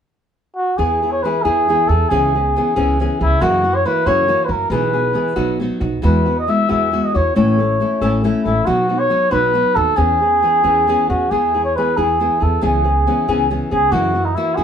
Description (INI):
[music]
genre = mexican folk, mariachi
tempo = 92 BPM (dotted quarters)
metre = 6/8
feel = rubato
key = E major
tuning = A4 = 438 Hz
[part]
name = trumpet with cup mute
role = melody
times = 0.6-14.6 s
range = D#4 to E5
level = -16 LUFS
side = equal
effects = none
[part]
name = nylon-string guitar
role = accompaniment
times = 0.8-14.6 s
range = F#2 to A4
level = -19 LUFS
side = left 2 dB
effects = none
[part]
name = upright bass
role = bass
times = 0.8-14.6 s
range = A1 to F#2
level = -21 LUFS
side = right 1 dB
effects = none
[sound]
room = moderate studio ambience, RT60 0.5 s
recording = band playing live in one room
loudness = -14 LUFS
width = side -8 dB against mid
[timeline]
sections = 0.8-11.3 A section; 11.3-14.6 A section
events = none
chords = 0.0 N.C.; 0.8 E; 2.1 C#m7; 3.4 F#7; 4.7 E/B; 5.4 B; 6.0 Eadd9; 7.4 A; 8.7 B; 10.0 E6; 11.3 E; 12.6 C#m7; 13.9 F#7